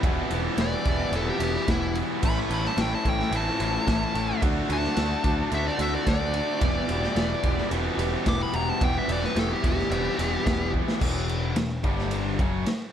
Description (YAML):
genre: classic rock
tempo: 109 BPM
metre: 4/4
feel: straight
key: E dorian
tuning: A4 = 440 Hz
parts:
  - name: picked acoustic archtop guitar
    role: accompaniment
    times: 0.0-11.0 s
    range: E2 to G4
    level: -36 LUFS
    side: right 10 dB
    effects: none
  - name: cranked stack guitar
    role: riff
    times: 0.0-12.7 s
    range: E2 to F#4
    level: -31 LUFS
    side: left 11 dB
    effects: overdrive
  - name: distorted electric guitar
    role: riff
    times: 0.0-11.0 s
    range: E2 to D4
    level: -33 LUFS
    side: equal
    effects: overdrive
  - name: tight distorted guitar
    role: riff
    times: 0.0-12.7 s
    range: E2 to G4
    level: -35 LUFS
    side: right 12 dB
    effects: distortion
  - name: growling picked electric bass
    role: bass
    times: 0.0-12.7 s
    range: E1 to D2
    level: -30 LUFS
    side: equal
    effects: overdrive
  - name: raw garage drum kit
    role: drums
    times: 0.0-12.8 s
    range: crash cymbal, kick drum, ride cymbal, snare drum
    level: -28 LUFS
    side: equal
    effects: none
  - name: dark smooth lead guitar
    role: melody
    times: 0.6-10.7 s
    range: E4 to D6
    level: -30 LUFS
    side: left 1 dB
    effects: overdrive
room: light reverb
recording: none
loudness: -23 LUFS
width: side -9 dB against mid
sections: 0.0-11.0 A section; 11.0-12.9 B section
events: lead electric guitar solo 0.0-11.0; drum fill 10.7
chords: 0.0 Em; 2.2 A; 4.4 D; 6.6 Em; 11.0 E5; 11.8 G5; 12.4 N.C.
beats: | 0.04 0.58 1.13 1.68 | 2.23 2.78 3.33 3.87 | 4.42 4.97 5.52 6.07 | 6.62 7.17 7.72 8.27 | 8.82 9.37 9.92 10.47 | 11.02 11.57 12.12 12.67